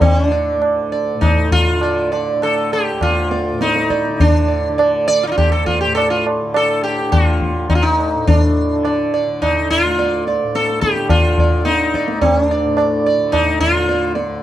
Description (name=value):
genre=indian classical, Hindustani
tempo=99-110 BPM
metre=7/4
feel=straight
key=D raga bhairavi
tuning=A4 = 440 Hz
part: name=sitar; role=melody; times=0.0-14.4 s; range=D4 to D5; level=-16 LUFS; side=right 1 dB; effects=plate reverb
part: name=tanpura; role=drone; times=0.0-14.4 s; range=D2 to D3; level=-24 LUFS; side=left 2 dB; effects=none
part: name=tabla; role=percussion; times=0.0-14.4 s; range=none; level=-17 LUFS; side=equal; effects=none
room=moderate studio reverb, RT60 0.5 s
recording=dark, warm production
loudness=-14 LUFS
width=side -12 dB against mid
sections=0.0-14.4 A section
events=speeding up 0.0-14.4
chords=none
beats=| 0.02 0.62 1.23 1.83 2.43 3.02 3.62 | 4.21 4.80 5.38 5.97 6.55 7.13 7.71 | 8.28 8.85 9.42 9.99 10.55 11.11 11.67 | 12.23 12.78 13.33 13.88 14.43